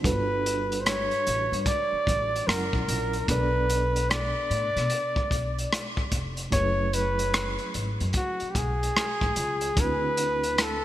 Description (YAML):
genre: R&B, neo-soul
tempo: 74 BPM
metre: 4/4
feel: swing 64% on 16ths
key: unclear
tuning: A4 = 439 Hz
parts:
  - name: reed electric piano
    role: accompaniment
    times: 0.0-10.8 s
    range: B2 to F#5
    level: -34 LUFS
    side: right 3 dB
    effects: fast tremolo
  - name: upright bass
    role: bass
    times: 0.0-10.8 s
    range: E#1 to B2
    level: -30 LUFS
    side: equal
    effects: none
  - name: crunchy breakbeat drum kit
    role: drums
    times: 0.0-10.8 s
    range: hi-hat, kick drum, rim click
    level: -28 LUFS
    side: equal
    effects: none
  - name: warm flugelhorn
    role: melody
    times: 0.1-10.8 s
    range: F#4 to D5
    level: -27 LUFS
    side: equal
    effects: none
room: moderate lush hall reverb, RT60 3.0 s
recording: bright 1980s-style digital production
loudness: -24 LUFS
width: side -13 dB against mid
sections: 0.0-10.8 A section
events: none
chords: 0.0 Gmaj9; 2.5 F#7; 3.3 Bm7; 6.5 F#m11; 9.8 D9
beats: | 0.04 0.85 1.66 2.47 | 3.28 4.09 4.91 5.72 | 6.53 7.34 8.15 8.96 | 9.77 10.58